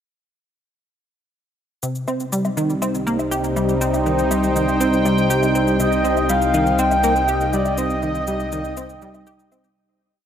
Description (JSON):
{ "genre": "ambient, sequencer-driven space music", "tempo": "121 BPM", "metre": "4/4", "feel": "straight", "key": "C minor", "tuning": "A4 = 440 Hz", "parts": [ { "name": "sweeping resonant pad", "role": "sustained chords", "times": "1.8-9.8 s", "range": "C3 to G5", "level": "-20 LUFS", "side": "equal", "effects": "chorus, shimmer reverb" }, { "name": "plucky analog bass", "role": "riff", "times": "1.8-9.7 s", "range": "C3 to G4", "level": "-23 LUFS", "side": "equal", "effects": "analog chorus, shimmer reverb, analog delay" }, { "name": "analog drone", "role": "bass", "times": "3.1-9.7 s", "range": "C2", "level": "-26 LUFS", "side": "equal", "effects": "chorus" }, { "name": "cabasa and woodblock", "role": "percussion", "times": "1.8-9.7 s", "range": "none", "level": "-31 LUFS", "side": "left 3 dB", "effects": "analog delay" }, { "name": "wind-like tuned noise texture", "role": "texture", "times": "2.4-9.8 s", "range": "Eb4", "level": "-30 LUFS", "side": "left 1 dB", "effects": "none" }, { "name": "breathy flute-like synth lead", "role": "melody", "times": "5.8-9.2 s", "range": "D5 to G5", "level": "-21 LUFS", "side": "left 1 dB", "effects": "lush chorus, shimmer reverb, analog delay" } ], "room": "wet huge ambient reverb, RT60 7.9 s", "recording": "none", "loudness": "-17 LUFS", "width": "side -9 dB against mid", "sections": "1.8-9.8 A section", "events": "fade-out 7.1-9.8", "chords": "1.8 Cm" }